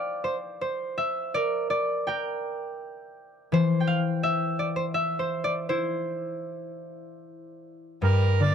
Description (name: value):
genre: celtic folk, Celtic slow air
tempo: 73-85 BPM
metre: 3/4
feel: rubato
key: G dorian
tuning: A4 = 440 Hz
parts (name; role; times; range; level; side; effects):
- concert harp; accompaniment; 0.0-8.5 s; G2 to G5; -25 LUFS; left 1 dB; none
- accordion; melody; 8.0-8.5 s; Bb4 to D5; -26 LUFS; right 9 dB; none
- clear fiddle; second line; 8.0-8.5 s; G3 to Bb3; -35 LUFS; left 1 dB; none
room: little or no reverb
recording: close, detailed microphones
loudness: -25 LUFS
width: side -8 dB against mid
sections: 0.0-8.0 A section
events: harp solo 0.0-8.0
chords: 0.0 N.C.; 8.0 Gm